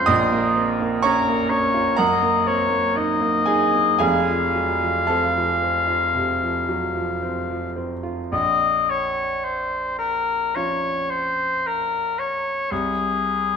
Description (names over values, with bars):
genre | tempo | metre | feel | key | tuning
classical, romantic duo for oboe and grand piano | 52-63 BPM | 4/4 | rubato | Bb minor | A4 = 436 Hz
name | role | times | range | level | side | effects
warm oboe | melody | 0.0-13.6 s | Ab4 to F5 | -21 LUFS | left 4 dB | none
bright baby grand piano | accompaniment | 0.0-13.6 s | F1 to Eb6 | -22 LUFS | right 3 dB | none
room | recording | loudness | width
wet recital hall reverb, RT60 1.3 s | dark, warm production | -19 LUFS | side -6 dB against mid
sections
0.0-8.3 A section; 8.3-13.6 B section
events
none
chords
0.1 Bbm; 2.0 Ebm/Gb; 4.0 F; 8.3 Bbm; 12.7 Ab/C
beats
| 0.07 1.02 1.98 2.97 | 4.03 5.08 6.15 7.22 | 8.32 9.45 10.56 11.65 | 12.71